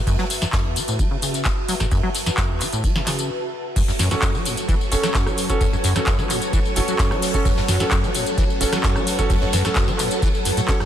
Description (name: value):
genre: acid house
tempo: 130 BPM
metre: 4/4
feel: straight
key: F# minor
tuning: A4 = 440 Hz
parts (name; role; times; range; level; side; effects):
- ethereal airy pad; texture; 0.0-10.9 s; F#4 to A5; -30 LUFS; equal; ensemble chorus, built-in reverb, sidechain pumping
- acid bass, saw; riff; 0.1-10.9 s; F#1 to F#3; -25 LUFS; equal; analog chorus, analog delay
- booming analog drum machine; drums; 0.1-10.9 s; crash cymbal, handclaps, hi-hat, rim click, snare drum, tambourine; -25 LUFS; left 1 dB; none
- electronic kick drum; drums; 0.1-10.8 s; none; -22 LUFS; equal; overdrive
- jazz brush drum kit; drums; 0.1-10.8 s; hi-hat, ride cymbal, snare drum; -33 LUFS; right 3 dB; sidechain pumping on hats, high-pass filter on hats, sidechain pumping on cymbals, high-pass filter on cymbals, high-pass filter on snare, high-pass filter on room
- string machine, full ensemble; sustained chords; 3.8-10.9 s; F#3 to C#5; -26 LUFS; equal; ensemble chorus, sidechain pumping
- warm concert grand piano; stabs; 4.1-10.8 s; C#4 to A4; -26 LUFS; right 2 dB; lush chorus, analog delay
room: light reverb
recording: lossy compression artefacts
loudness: -18 LUFS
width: side -10 dB against mid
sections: 0.0-3.8 A section; 3.8-10.9 B section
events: stop 3.3-3.8; drop 3.8-10.9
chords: 0.0 F#m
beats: | 0.07 0.53 0.99 1.45 | 1.92 2.38 2.84 3.30 | 3.76 4.22 4.68 5.15 | 5.61 6.07 6.53 6.99 | 7.45 7.92 8.38 8.84 | 9.30 9.76 10.22 10.69